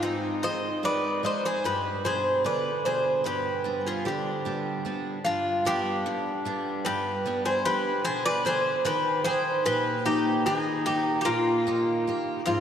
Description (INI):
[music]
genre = greek folk, Greek bouzouki band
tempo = 149 BPM (eighths)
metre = 9/8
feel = straight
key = G phrygian dominant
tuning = A4 = 438 Hz
[part]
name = Greek bouzouki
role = melody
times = 0.0-12.6 s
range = Eb4 to Eb5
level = -26 LUFS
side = equal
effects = diffuse ambient delay
[part]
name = bowl-back mandolin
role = second line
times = 0.0-12.6 s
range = Bb3 to C5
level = -30 LUFS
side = left 2 dB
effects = diffuse ambient delay
[part]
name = picked steel-string acoustic guitar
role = accompaniment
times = 0.0-12.6 s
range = G2 to G5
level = -32 LUFS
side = right 4 dB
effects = wide subtle chorus
[sound]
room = wet cathedral reverb, RT60 5.5 s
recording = dreamy mix soaked in reverb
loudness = -24 LUFS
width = side -8 dB against mid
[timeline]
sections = 0.0-5.3 A section; 5.3-12.6 B section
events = none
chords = 0.0 Ab; 1.6 G; 8.9 Eb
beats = 0.01 0.41 0.82 1.22 | 1.63 2.03 2.43 2.84 3.24 3.64 4.05 4.45 4.85 | 5.25 5.66 6.06 6.46 6.86 7.26 7.67 8.07 8.47 | 8.87 9.27 9.67 10.07 10.48 10.88 11.28 11.68 12.08 | 12.48